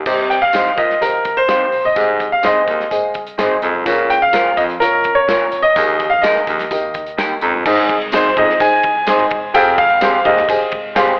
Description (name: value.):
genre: uptempo 1960s-style soul.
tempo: 127 BPM.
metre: 4/4.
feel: straight.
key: Ab major.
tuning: A4 = 440 Hz.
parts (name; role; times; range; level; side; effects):
upright bass; bass; 0.0-11.1 s; Fb1 to Db3; -35 LUFS; equal; none.
dark upright piano; accompaniment; 0.1-11.2 s; Ab2 to Bb5; -19 LUFS; equal; none.
growling baritone saxophone; riff; 0.1-10.4 s; Eb2 to C3; -19 LUFS; equal; none.
warm soul drum kit; drums; 0.1-11.2 s; crash cymbal, hi-hat, kick drum, ride cymbal, snare drum; -24 LUFS; equal; none.
tambourine; percussion; 0.1-11.1 s; none; -35 LUFS; equal; none.
clear baby grand piano; melody; 0.3-11.2 s; Bb4 to Ab5; -14 LUFS; equal; tape echo.
electric guitar through a small old amp; stabs; 0.5-11.1 s; Ab3 to C5; -21 LUFS; equal; spring reverb.
room: moderate large studio reverb, RT60 1.1 s.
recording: telephone sound.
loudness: -12 LUFS.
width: side -34 dB against mid.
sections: 0.1-7.7 A section; 7.7-11.2 B section.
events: none.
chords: 0.1 Cm; 2.0 Ab/C; 3.9 Bbm/Db; 5.8 Ebsus4; 6.7 Eb; 7.7 Ab; 9.5 Fmadd9.